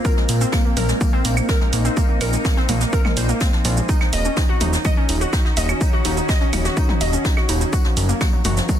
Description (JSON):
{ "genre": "melodic techno", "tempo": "125 BPM", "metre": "4/4", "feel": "straight", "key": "Bb minor", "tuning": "A4 = 441 Hz", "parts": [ { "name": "evolving wavetable pad", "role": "sustained chords", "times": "0.0-8.8 s", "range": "Eb3 to Bb4", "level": "-27 LUFS", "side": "equal", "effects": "chorus, built-in reverb, sidechain pumping" }, { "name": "warbly dusty pluck", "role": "arpeggios", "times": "0.0-8.8 s", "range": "F3 to Eb5", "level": "-24 LUFS", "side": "equal", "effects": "wide subtle chorus, sidechain pumping, tape echo" }, { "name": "electronic kick drum", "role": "drums", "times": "0.0-8.8 s", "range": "none", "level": "-19 LUFS", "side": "equal", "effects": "overdrive" }, { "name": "jazz brush drum kit", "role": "drums", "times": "0.0-8.8 s", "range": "hi-hat, snare drum, tambourine", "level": "-31 LUFS", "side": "left 2 dB", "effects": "sidechain pumping on hats, high-pass filter on hats, soft clipping on snare, high-pass filter on snare, sidechain pumping on perc, high-pass filter on perc, high-pass filter on room" }, { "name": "punchy analog drum machine", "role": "drums", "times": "0.0-8.8 s", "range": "claves, hi-hat, shaker, toms", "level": "-26 LUFS", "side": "right 2 dB", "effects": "none" }, { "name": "fat analog bass", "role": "bass", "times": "0.3-8.6 s", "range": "Eb1 to Bb1", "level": "-21 LUFS", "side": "equal", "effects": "sidechain pumping" } ], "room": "light reverb", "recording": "dense, heavily limited modern master", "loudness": "-16 LUFS", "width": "side -10 dB against mid", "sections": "0.0-8.8 A section", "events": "none", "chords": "0.0 Bbsus2; 3.9 Ebm7; 7.7 Gb6", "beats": "| 0.05 0.53 1.01 1.49 | 1.97 2.45 2.93 3.41 | 3.89 4.37 4.85 5.33 | 5.81 6.29 6.77 7.25 | 7.73 8.21 8.69" }